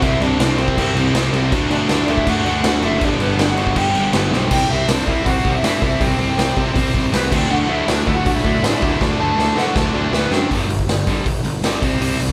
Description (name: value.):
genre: punk rock.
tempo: 160 BPM.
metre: 4/4.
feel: straight.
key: unclear.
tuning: A4 = 440 Hz.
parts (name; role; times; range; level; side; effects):
bluesy overdriven lead guitar; melody; 0.0-10.5 s; B3 to A5; -24 LUFS; equal; distortion.
cranked stack guitar; riff; 0.0-12.3 s; G2 to D4; -26 LUFS; equal; overdrive.
crunchy overdriven guitar; riff; 0.0-12.3 s; G2 to D4; -27 LUFS; equal; none.
fuzz guitar; riff; 0.0-4.5, 7.5-10.5 s; G2 to E4; -27 LUFS; equal; none.
fuzz picked electric bass; bass; 0.0-12.3 s; F#1 to D3; -24 LUFS; equal; overdrive.
raw garage drum kit; drums; 0.0-12.3 s; crash cymbal, hi-hat, kick drum, snare drum; -22 LUFS; equal; none.
room: light reverb.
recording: band playing live in one room.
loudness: -17 LUFS.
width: mono.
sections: 0.0-4.5 A section; 4.5-10.5 B section; 10.5-12.3 C section.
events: drum fill 4.3, 9.0-10.5.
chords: 0.0 C; 1.5 D; 3.0 G; 4.5 C; 7.3 D; 10.5 G5; 11.8 C5.